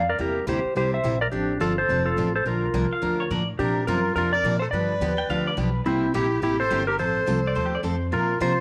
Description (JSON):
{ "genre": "country, western swing", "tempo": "212 BPM", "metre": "4/4", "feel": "swing 61% on 8ths", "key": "Bb major", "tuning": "A4 = 440 Hz", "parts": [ { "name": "clean lap steel guitar", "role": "melody", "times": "0.0-8.6 s", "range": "C4 to E5", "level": "-26 LUFS", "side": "equal", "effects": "none" }, { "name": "upright bass", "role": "bass", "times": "0.0-8.6 s", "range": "F1 to C3", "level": "-31 LUFS", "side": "equal", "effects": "none" }, { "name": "picked steel-string acoustic guitar", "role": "accompaniment", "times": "0.2-8.5 s", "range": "C3 to Bb4", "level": "-30 LUFS", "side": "equal", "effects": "none" }, { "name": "pedal steel guitar", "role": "second line", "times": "2.9-8.1 s", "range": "G4 to G5", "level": "-33 LUFS", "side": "equal", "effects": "none" }, { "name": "clear erhu", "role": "second line", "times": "3.6-8.6 s", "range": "E4 to D5", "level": "-36 LUFS", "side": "equal", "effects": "slapback echo" } ], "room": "light reverb, studio ambience", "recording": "none", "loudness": "-24 LUFS", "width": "mono", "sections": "0.0-8.6 A section", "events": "none", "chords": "0.2 C7; 1.3 F6; 2.5 Bb; 3.6 Bbadd9; 4.7 G7; 5.9 C7; 7.0 F" }